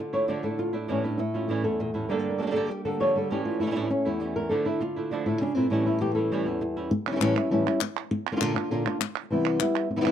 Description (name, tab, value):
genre	flamenco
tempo	200 BPM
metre	4/4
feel	straight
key	A phrygian dominant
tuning	A4 = 440 Hz
part	flamenco guitar	melody	0.0-10.1 s	E2 to D5	-25 LUFS	left 1 dB	tape echo
part	flamenco guitar	stabs	0.0-6.9 s	G2 to A4	-30 LUFS	right 5 dB	none
part	palmas hand claps	percussion	7.1-10.1 s	none	-31 LUFS	right 2 dB	none
room	light reverb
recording	dry, close 1970s-style studio recording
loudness	-24 LUFS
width	side -9 dB against mid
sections	0.0-6.9 A section; 6.9-10.1 B section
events	nylon-string guitar solo 0.0-6.9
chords	0.0 Dmadd9; 0.9 A7; 2.1 Gmadd9; 3.3 A7; 4.5 Dmadd9; 5.7 A7; 8.1 Bb; 9.3 Cmaj7